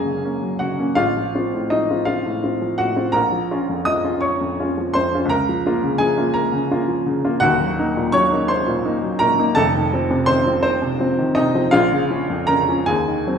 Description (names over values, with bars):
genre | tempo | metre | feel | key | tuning
classical, romantic character piece for solo piano | 56 BPM (dotted quarters) | 6/8 | rubato | Bb minor | A4 = 440 Hz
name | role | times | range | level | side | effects
warm upright piano | solo | 0.0-13.4 s | Eb1 to Eb6 | -17 LUFS | equal | none
room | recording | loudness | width
wet recital hall reverb, RT60 1.4 s | heard from further back in the room | -17 LUFS | side -7 dB against mid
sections
0.0-13.4 A section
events
none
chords
0.0 Gbmaj7; 1.0 F/A; 3.1 Bbm; 5.3 Bbm/Db; 7.4 Ebm; 9.6 F7; 11.7 Bbm; 12.9 Cdim/Eb